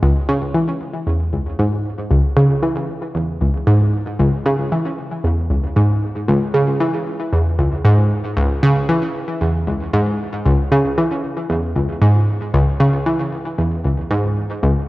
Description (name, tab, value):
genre	ambient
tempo	115 BPM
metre	4/4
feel	straight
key	C# minor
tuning	A4 = 440 Hz
part	analog pluck	solo	0.0-14.7 s	C#2 to E3	-15 LUFS	equal	chorus, tape echo
room	moderate plate reverb, RT60 2.8 s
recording	worn, warbling old tape, cassette tape, warbly pitch drift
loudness	-15 LUFS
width	side -18 dB against mid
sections	0.0-14.9 A section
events	none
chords	none